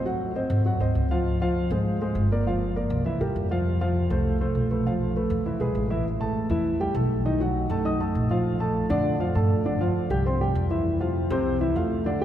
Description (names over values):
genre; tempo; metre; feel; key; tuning
Afro-Cuban jazz; 200 BPM; 4/4; straight; F major; A4 = 440 Hz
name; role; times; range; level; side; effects
warm baby grand piano; accompaniment; 0.0-12.2 s; C3 to D#6; -25 LUFS; equal; none
upright bass; bass; 0.0-12.2 s; G1 to Ab2; -26 LUFS; equal; none
room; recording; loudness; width
wet cathedral reverb, RT60 5.0 s; recorded in a church or concert hall; -22 LUFS; side -11 dB against mid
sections
0.0-6.1 A section; 6.1-12.2 B section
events
none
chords
0.1 Ab7; 1.3 Dbmaj7; 2.5 Gm7; 3.1 C7; 3.7 F; 4.9 Fmaj7#11/B; 5.5 E; 6.1 A5; 7.3 B7; 8.5 Bbmaj7; 9.7 G5; 10.3 C; 10.9 Fmaj7